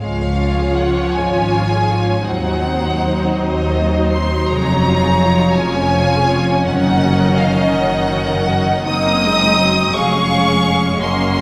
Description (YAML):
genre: classical, slow romantic movement for string orchestra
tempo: 55 BPM (dotted quarters)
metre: 6/8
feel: uneven beats, rubato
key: Db major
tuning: A4 = 444 Hz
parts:
  - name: warm symphonic violin section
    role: melody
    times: 0.0-11.4 s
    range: Eb5 to Eb6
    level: -22 LUFS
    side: equal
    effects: none
  - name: warm symphonic violin section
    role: second line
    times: 0.0-11.4 s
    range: Ab3 to F5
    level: -23 LUFS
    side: equal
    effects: none
  - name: warm symphonic viola section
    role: accompaniment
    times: 0.0-11.4 s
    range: Eb3 to F4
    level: -22 LUFS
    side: equal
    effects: none
  - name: dark symphonic cello section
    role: bass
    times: 0.0-11.4 s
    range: Db2 to Ab2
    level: -24 LUFS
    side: equal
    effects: none
  - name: warm symphonic double bass section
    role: bass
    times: 0.0-11.4 s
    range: F1 to Eb2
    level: -22 LUFS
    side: equal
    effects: none
room: wet concert hall reverb, RT60 2.4 s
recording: none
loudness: -16 LUFS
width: mono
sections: 0.0-11.4 A section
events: none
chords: 0.0 Db; 2.2 Cdim/Eb; 4.5 Db/F; 6.6 Ebm7/Gb; 8.8 Ab7/Gb; 9.9 Db/F